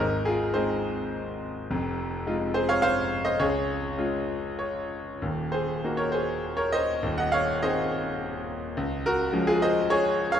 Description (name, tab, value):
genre	classical, lyrical solo piano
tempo	95-108 BPM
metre	3/4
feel	rubato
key	unclear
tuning	A4 = 440 Hz
part	bright concert grand piano	solo	0.0-10.4 s	Eb1 to Gb5	-24 LUFS	equal	none
room	moderate scoring stage reverb, RT60 1.9 s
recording	dark, warm production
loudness	-24 LUFS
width	side -9 dB against mid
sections	0.0-10.4 A section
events	grand piano fill 4.3-5.2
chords	0.0 Ab; 1.7 Fm7; 3.4 Db; 5.2 Ebm; 7.0 Ab/Eb; 8.8 Db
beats	0.56 1.13 | 1.70 2.26 2.82 | 3.40 3.99 4.60 | 5.23 5.84 6.43 | 7.02 7.62 8.20 | 8.77 9.33 9.89